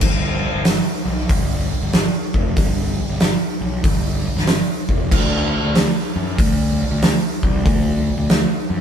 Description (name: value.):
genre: blues rock power trio and southern rock.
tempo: 94 BPM.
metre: 4/4.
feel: swing 65% on 8ths.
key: G mixolydian.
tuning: A4 = 441 Hz.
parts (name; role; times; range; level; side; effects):
fuzz picked electric bass; bass; 0.0-8.8 s; F1 to F#2; -21 LUFS; left 1 dB; overdrive.
oversized low-tuned drum kit; drums; 0.0-8.5 s; crash cymbal, hi-hat, kick drum, snare drum; -17 LUFS; equal; none.
room: moderate studio reverb, RT60 0.5 s.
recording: band playing live in one room.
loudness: -16 LUFS.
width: side -8 dB against mid.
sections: 0.0-8.8 A section.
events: none.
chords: none.